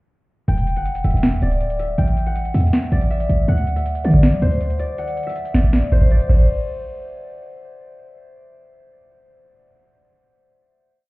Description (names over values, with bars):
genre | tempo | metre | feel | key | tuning
hip hop, trap | 160 BPM | 4/4 | half-time | unclear | A4 = 440 Hz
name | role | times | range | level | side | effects
concert harp | melody | 0.5-8.3 s | C5 to G5 | -26 LUFS | left 1 dB | tape echo
short 808-style bass | bass | 0.5-4.8 s | D1 to F#3 | -18 LUFS | equal | none
booming analog drum machine | drums | 0.5-6.5 s | crash cymbal, hi-hat, kick drum, snare drum | -14 LUFS | equal | overdrive
room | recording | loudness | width
little or no reverb | heard muffled through a wall, club reverb, EQ | -16 LUFS | side -21 dB against mid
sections
0.5-6.5 hook; 6.5-9.5 final hit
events
none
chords
0.5 Em; 2.0 A5; 3.5 D; 5.0 N.C.